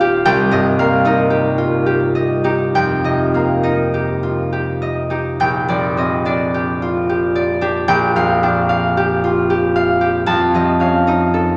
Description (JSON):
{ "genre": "classical, solo harp piece", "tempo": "65-78 BPM", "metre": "3/4", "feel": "rubato", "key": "Bb major", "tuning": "A4 = 440 Hz", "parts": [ { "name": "concert harp", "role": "solo", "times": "0.0-11.6 s", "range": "Bb1 to A5", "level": "-16 LUFS", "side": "equal", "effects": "none" } ], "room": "wet cathedral reverb, RT60 5.3 s", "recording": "none", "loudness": "-16 LUFS", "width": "mono", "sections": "0.0-11.6 A section", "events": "none", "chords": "0.3 Cm7; 2.8 F9sus4; 5.4 Bb69; 7.9 Gm7/Bb; 10.3 Faug7" }